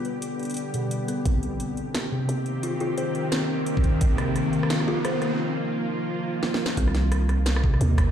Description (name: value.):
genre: half-time drum and bass.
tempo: 174 BPM.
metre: 4/4.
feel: swing 59% on 16ths, half-time.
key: C minor.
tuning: A4 = 440 Hz.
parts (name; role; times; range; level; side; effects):
bowed-like drone; sustained chords; 0.0-8.1 s; C3 to G4; -28 LUFS; equal; built-in reverb, sidechain pumping.
kalimba; arpeggios; 0.0-7.7 s; B2 to C5; -29 LUFS; left 1 dB; low-pass filter, tape echo.
drum and bass drum kit; drums; 0.0-8.1 s; hi-hat, rim click, snare drum; -30 LUFS; equal; none.
growling 808-style bass; bass; 1.3-8.1 s; Bb1 to Eb2; -24 LUFS; equal; high-pass filter.
electronic kick drum; drums; 1.3, 3.8-4.1, 6.8-8.1 s; none; -22 LUFS; equal; none.
riser; sound effects; 2.8-5.4 s; none; -35 LUFS; right 1 dB; none.
room: moderate digital room reverb, RT60 1.0 s.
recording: played on a big sound system in a bare room, large studio reverb.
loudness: -22 LUFS.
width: side -9 dB against mid.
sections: 0.0-1.3 A section; 1.3-6.8 B section; 6.8-8.1 C section.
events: filter sweep on synth drone 0.0-1.3; build-up 1.3-6.8; filter sweep on kalimba 1.3-6.8; riser 2.8-5.4; break 5.4-6.8; drum fill 6.4-6.8; drop 6.8-8.1.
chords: 0.0 G; 1.3 Cm7; 4.0 Bbsus4; 6.8 Cm7.